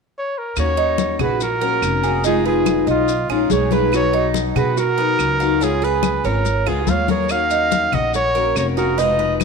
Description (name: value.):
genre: latin, Cuban son and guajira.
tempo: 142 BPM.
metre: 4/4.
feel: straight.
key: Eb minor.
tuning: A4 = 440 Hz.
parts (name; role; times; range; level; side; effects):
warm trumpet; melody; 0.2-9.3 s; F4 to F5; -21 LUFS; equal; none.
nylon-string guitar; second line; 0.6-9.3 s; Cb4 to Db5; -25 LUFS; right 11 dB; slapback echo.
picked steel-string acoustic guitar; accompaniment; 0.6-9.4 s; Cb3 to Ab4; -23 LUFS; left 13 dB; none.
upright bass; bass; 0.6-9.4 s; F1 to B2; -24 LUFS; equal; none.
claves; percussion; 0.6-9.4 s; none; -31 LUFS; right 14 dB; none.
congas; percussion; 0.6-9.4 s; none; -25 LUFS; left 11 dB; none.
maracas; percussion; 0.6-9.4 s; none; -33 LUFS; left 15 dB; none.
Cuban tres; arpeggios; 0.8-9.4 s; B3 to Eb5; -24 LUFS; right 7 dB; none.
room: moderate echo chamber reverb, RT60 1.4 s, small room reverb.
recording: 1960s-style stereo with parts hard left and right.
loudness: -16 LUFS.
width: side -5 dB against mid.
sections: 0.6-9.4 A section.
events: none.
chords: 0.0 N.C.; 0.6 Ebm7; 2.2 Fm7b5; 3.9 B; 5.6 Db7; 7.3 Ebm7.